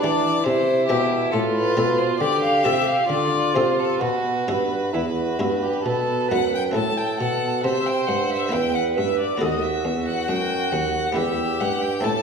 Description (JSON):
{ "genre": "classical, baroque-style sonata movement with continuo", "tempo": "68 BPM", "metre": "3/4", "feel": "straight", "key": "unclear", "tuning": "A4 = 440 Hz", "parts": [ { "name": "rich violin", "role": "melody", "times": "0.0-12.2 s", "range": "G4 to A5", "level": "-24 LUFS", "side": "left 3 dB", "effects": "none" }, { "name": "warm violin", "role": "second line", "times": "0.0-12.2 s", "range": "D4 to C5", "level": "-25 LUFS", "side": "right 3 dB", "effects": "none" }, { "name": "buff-stop harpsichord", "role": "accompaniment", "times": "0.0-12.2 s", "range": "D#2 to B4", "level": "-27 LUFS", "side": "left 1 dB", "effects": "none" }, { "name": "mellow bassoon", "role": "bass", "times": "0.0-12.2 s", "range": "D#2 to E3", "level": "-24 LUFS", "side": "right 1 dB", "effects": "none" } ], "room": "wet recital hall reverb, RT60 1.4 s", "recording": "heard from further back in the room", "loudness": "-19 LUFS", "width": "side -6 dB against mid", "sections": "0.0-6.8 A section; 6.8-12.2 B section", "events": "none", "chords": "0.5 C; 1.3 F/A; 4.0 Bsus4; 5.9 B; 6.8 Am; 8.5 Em; 9.4 B7/D#; 11.2 Em" }